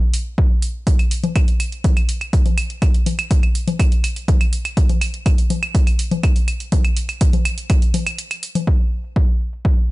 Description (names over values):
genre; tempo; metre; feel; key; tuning
techno; 123 BPM; 4/4; straight; none; none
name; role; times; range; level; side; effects
electronic hi-hat, claves and congas; drums; 0.1-9.9 s; none; -23 LUFS; left 2 dB; overdrive, low-pass filter on hats, small room ambience, low-pass filter on perc
electronic kick drum; drums; 0.4-9.7 s; none; -16 LUFS; equal; small room ambience
room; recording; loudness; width
little or no reverb; nothing above 10.4 kHz; -16 LUFS; side -20 dB against mid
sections
0.0-8.7 A section; 8.7-9.9 B section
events
break 8.2-8.7; filter sweep on drum 8.7-9.9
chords
none